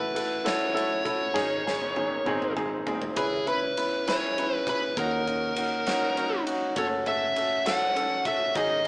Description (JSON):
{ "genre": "six-eight pop ballad", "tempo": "67 BPM (dotted quarters)", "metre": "6/8", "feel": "straight", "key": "C# minor", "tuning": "A4 = 439 Hz", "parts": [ { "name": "dark smooth lead guitar", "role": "melody", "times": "0.0-8.9 s", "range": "G#4 to F#5", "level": "-27 LUFS", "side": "equal", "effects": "overdrive" }, { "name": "warm baby grand piano", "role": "accompaniment", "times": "0.0-8.8 s", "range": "B#3 to B4", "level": "-28 LUFS", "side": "equal", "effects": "none" }, { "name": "direct-recorded clean electric guitar", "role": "arpeggios", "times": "0.0-8.9 s", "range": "D#3 to G#4", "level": "-38 LUFS", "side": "equal", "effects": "none" }, { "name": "vintage muted fingered electric bass", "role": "bass", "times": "0.0-8.9 s", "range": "F#1 to D#2", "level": "-42 LUFS", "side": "equal", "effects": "none" }, { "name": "huge arena drum kit", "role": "drums", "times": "0.2-8.9 s", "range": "kick drum, ride cymbal, snare drum, toms", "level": "-34 LUFS", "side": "equal", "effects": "none" } ], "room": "moderate studio reverb, RT60 0.7 s", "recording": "band playing live in one room, small speaker sound", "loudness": "-24 LUFS", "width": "side -33 dB against mid", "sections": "0.0-3.2 A section; 3.2-8.9 A section", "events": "drum fill 1.4-3.2", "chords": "0.0 F#m7/A; 1.4 G#sus4; 2.3 G#; 3.2 C#m7; 5.0 D#m7; 6.8 F#m", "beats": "0.46 | 1.35 2.26 | 3.17 4.07 | 4.97 5.87 | 6.76 7.66 | 8.55" }